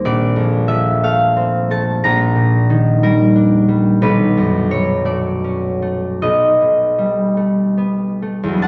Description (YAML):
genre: classical, solo harp piece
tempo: 44-62 BPM (dotted quarters)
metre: 6/8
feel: rubato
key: unclear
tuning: A4 = 439 Hz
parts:
  - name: concert harp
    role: solo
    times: 0.0-8.7 s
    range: A#1 to C6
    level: -16 LUFS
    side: equal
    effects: none
room: wet recital hall reverb, RT60 1.4 s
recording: none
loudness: -16 LUFS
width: mono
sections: 0.0-8.6 A section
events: none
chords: 0.1 A#maj9; 2.0 D#maj9/A#; 4.0 Bm9; 6.2 Baug7